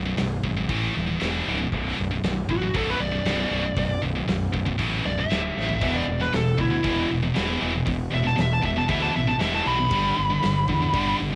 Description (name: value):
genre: heavy metal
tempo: 117 BPM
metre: 4/4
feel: straight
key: B minor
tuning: A4 = 441 Hz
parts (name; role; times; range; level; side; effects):
- scooped high-gain guitar; riff; 0.0-11.4 s; B1 to A3; -29 LUFS; equal; distortion, cassette tape
- fuzz fingered electric bass; bass; 0.0-11.4 s; B0 to E2; -31 LUFS; equal; overdrive
- big rock drum kit; drums; 0.2-11.1 s; hi-hat, kick drum, snare drum, toms; -33 LUFS; equal; cassette tape
- high-gain lead guitar; melody; 2.5-11.2 s; E4 to B5; -28 LUFS; equal; distortion, cassette tape
- tight distorted guitar; riff; 5.8-11.4 s; E2 to G3; -30 LUFS; equal; distortion, cassette tape
room: light reverb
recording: home recording on cassette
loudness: -24 LUFS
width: mono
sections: 0.0-11.4 A section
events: lead electric guitar solo 0.0-11.4; drum fill 5.6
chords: 0.0 B5; 0.7 A5; 1.2 E5; 1.7 Bm; 5.3 D5; 5.8 E5; 9.9 G